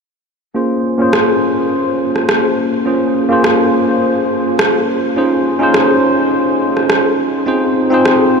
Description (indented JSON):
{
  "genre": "organic downtempo",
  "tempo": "104 BPM",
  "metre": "4/4",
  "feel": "swing 54% on 16ths",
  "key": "Bb minor",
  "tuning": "A4 = 440 Hz",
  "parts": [
    { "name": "bell-like tine electric piano", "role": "accompaniment", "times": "0.5-8.4 s", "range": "Bb3 to C5", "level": "-12 LUFS", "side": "equal", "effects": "analog chorus, low-pass filter, ping-pong delay" },
    { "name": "electronic rim click", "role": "drums", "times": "1.1-8.2 s", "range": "none", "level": "-17 LUFS", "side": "equal", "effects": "overdrive" }
  ],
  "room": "wet huge ambient reverb, RT60 7.9 s",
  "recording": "dreamy mix soaked in reverb",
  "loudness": "-11 LUFS",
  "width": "side -5 dB against mid",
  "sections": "0.6-8.4 A section",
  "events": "filter sweep on tine electric piano 0.6-8.4",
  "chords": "0.6 Bbm7; 5.2 Dbmaj7; 7.5 Fm7/C"
}